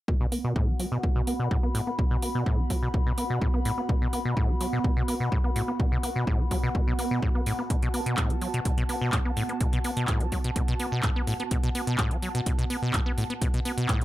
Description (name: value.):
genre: acid house.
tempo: 126 BPM.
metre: 4/4.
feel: straight.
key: unclear.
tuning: A4 = 438 Hz.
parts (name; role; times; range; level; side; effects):
acid bass, saw; riff; 0.1-14.0 s; A2 to B3; -29 LUFS; equal; tube saturation.
electronic kick drum; drums; 0.1-14.0 s; none; -26 LUFS; equal; none.
airy breathy pad; texture; 0.1-14.0 s; B3 to B5; -33 LUFS; right 1 dB; chorus, sidechain pumping.
booming analog drum machine; drums; 0.3-14.0 s; handclaps, hi-hat; -34 LUFS; right 1 dB; none.
room: moderate small room reverb, RT60 0.6 s.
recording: none.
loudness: -24 LUFS.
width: side -16 dB against mid.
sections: 0.1-14.0 A section.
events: filter sweep on acid bass 0.1-14.0.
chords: 0.1 B5.